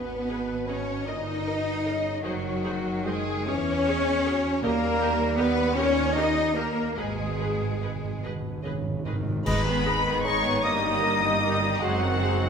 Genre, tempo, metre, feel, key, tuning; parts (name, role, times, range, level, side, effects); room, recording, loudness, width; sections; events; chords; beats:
classical, slow romantic movement for symphony orchestra; 46-54 BPM (dotted quarters); 6/8; rubato; G# minor; A4 = 440 Hz
dark clarinet; second line; 0.0-12.5 s; F#4 to D#5; -34 LUFS; left 2 dB
hollow flute section; second line; 0.0-12.5 s; F#4 to D#5; -34 LUFS; left 5 dB
warm symphonic violin section; second line; 0.0-12.5 s; A#3 to D#5; -34 LUFS; left 4 dB
mellow bassoon; accompaniment; 0.0-12.4 s; A#2 to A#3; -35 LUFS; right 3 dB
clear French horn section; sustained chords; 0.0-12.5 s; F#3 to D#4; -31 LUFS; left 4 dB
clear studio cello section; bass; 0.0-12.5 s; F#2 to D#4; -30 LUFS; right 2 dB
warm symphonic double bass section; bass; 0.0-12.5 s; F#1 to E2; -32 LUFS; right 4 dB
rich symphonic violin section; melody; 0.3-12.5 s; C#5 to D#6; -31 LUFS; left 4 dB
rich symphonic viola section; accompaniment; 0.3-12.5 s; D#3 to B#4; -35 LUFS; right 2 dB
timpani; percussion; 7.0-10.6 s; G#2; -32 LUFS; equal
clear oboe; second line; 9.5-12.4 s; B#4 to D#5; -36 LUFS; right 2 dB
dark trumpet; stabs; 9.5-12.5 s; F#4 to D#5; -31 LUFS; right 3 dB
clash cymbals and concert bass drum; percussion; 9.5-11.0 s; -34 LUFS; equal
wet scoring stage reverb, RT60 1.9 s; minimal, uncompressed stereo recording; -23 LUFS; side -6 dB against mid
0.0-9.5 A section; 9.5-12.5 B section
timpani fill 7.0-9.5; band accent 9.5-10.2
0.0 G#m; 1.1 D#/G; 2.2 G#7/F#; 3.5 C#m/E; 4.6 D#; 5.8 D#7; 7.0 G#m; 10.6 D#/G; 11.8 G#7/F#
1.07 | 2.24 3.48 | 4.64 5.76 | 6.97 8.22 | 9.45 10.63 | 11.81